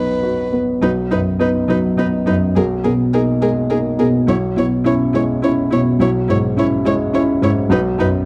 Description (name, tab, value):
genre	neoclassical piano and strings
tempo	104 BPM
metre	3/4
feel	rubato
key	B major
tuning	A4 = 440 Hz
part	dark violin	melody	0.0-8.1 s	A#4 to C#5	-26 LUFS	equal	none
part	felt-muted upright piano	accompaniment	0.0-8.3 s	B1 to F#4	-18 LUFS	equal	none
part	warm viola	accompaniment	0.8-8.1 s	D#4 to G#4	-25 LUFS	equal	none
room	moderate large studio reverb, RT60 1.4 s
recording	dark, warm production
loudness	-17 LUFS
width	mono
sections	0.8-8.3 A section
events	none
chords	0.0 B; 2.6 G#madd9/B; 4.3 E6/B; 7.7 B